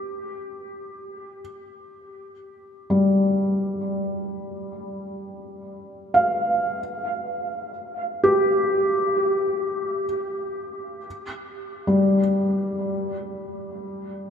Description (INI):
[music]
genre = ambient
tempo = free time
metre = none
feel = none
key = unclear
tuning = A4 = 440 Hz
[part]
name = felt-muted upright piano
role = solo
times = 0.0-14.3 s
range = G3 to F5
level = -22 LUFS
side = equal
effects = diffuse ambient delay
[sound]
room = wet cathedral reverb, RT60 5.1 s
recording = in a vast, echoing space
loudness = -21 LUFS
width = side -7 dB against mid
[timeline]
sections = 0.0-14.3 A section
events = none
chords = 0.0 Fsus2/G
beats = free time